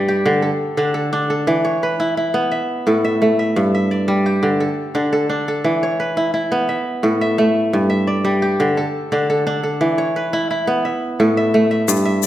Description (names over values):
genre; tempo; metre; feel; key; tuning
west african traditional, West African string and xylophone music; 115 BPM (dotted quarters); 12/8; straight; unclear; A4 = 440 Hz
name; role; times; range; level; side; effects
kora; arpeggios; 0.0-12.3 s; G2 to E5; -16 LUFS; equal; none
egg shaker; percussion; 11.9-12.3 s; none; -20 LUFS; left 14 dB; none
room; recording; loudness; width
wet recital hall reverb, RT60 1.4 s; none; -16 LUFS; side -13 dB against mid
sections
0.0-11.9 A section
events
none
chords
0.4 D5; 1.5 E5; 2.5 A5; 3.6 G5; 4.6 D5; 5.7 E5; 6.7 A5; 7.7 G5; 8.8 D5; 9.8 E5; 10.9 A5